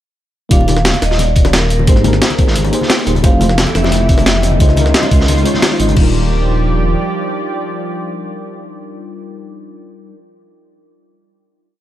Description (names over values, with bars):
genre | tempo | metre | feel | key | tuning
liquid drum and bass | 176 BPM | 4/4 | straight | Eb major | A4 = 438 Hz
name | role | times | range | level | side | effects
vibraphone with medium hard mallets | melody | 0.5-5.6 s | Bb4 to F5 | -22 LUFS | equal | dub echo
mellow FM electric piano | accompaniment | 0.5-10.2 s | G3 to Eb5 | -21 LUFS | left 1 dB | chorus, tape echo
dark detuned saw bass | bass | 0.5-7.0 s | Eb1 to Db2 | -14 LUFS | equal | tube saturation
breakbeat sampler-style drum kit | drums | 0.5-6.0 s | crash cymbal, hi-hat, snare drum | -18 LUFS | equal | none
crunchy breakbeat drum kit | drums | 0.5-6.0 s | hi-hat, snare drum | -20 LUFS | equal | high-pass filter on hats, high-pass filter on snare, high-pass filter on room
electronic kick drum | drums | 0.5-6.0 s | none | -11 LUFS | equal | none
bongos and congas | percussion | 0.6-6.0 s | none | -22 LUFS | left 5 dB | none
lush unison pad | sustained chords | 3.2-9.5 s | Eb3 to D5 | -22 LUFS | right 2 dB | chorus, sidechain pumping
room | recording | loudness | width
light reverb, studio ambience | dark, warm production | -10 LUFS | side -12 dB against mid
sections
0.5-6.0 drop; 6.0-8.7 final chord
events
drop 0.5-6.0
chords
0.5 Ebmaj9; 1.9 Abmaj9; 3.2 Fmaj9; 4.6 Dbmaj9; 6.0 Ebmaj9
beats
| 0.51 0.85 1.19 1.53 | 1.88 2.22 2.56 2.90 | 3.24 3.58 3.92 4.26 | 4.60 4.94 5.29 5.63 | 5.97 6.31 6.65 6.99 | 7.33 7.67 8.01 8.35